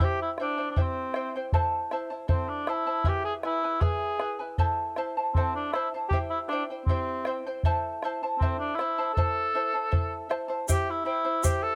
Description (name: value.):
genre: andean folk, Andean ensemble.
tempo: 79 BPM.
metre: 2/4.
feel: straight.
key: A minor pentatonic.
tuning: A4 = 440 Hz.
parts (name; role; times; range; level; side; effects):
mellow cor anglais; melody; 0.0-11.8 s; C4 to A4; -32 LUFS; equal; none.
charango; accompaniment; 0.0-11.8 s; E4 to A5; -34 LUFS; equal; none.
bombo; percussion; 0.0-11.6 s; none; -29 LUFS; equal; none.
tube shaker; percussion; 10.7-11.6 s; none; -35 LUFS; equal; none.
room: light reverb.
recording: close, detailed microphones.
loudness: -28 LUFS.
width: mono.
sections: 0.0-10.7 A section; 10.7-11.8 B section.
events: none.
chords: 0.0 C; 1.5 Am; 3.1 E; 4.6 Am; 6.1 C; 7.6 Am; 10.7 C.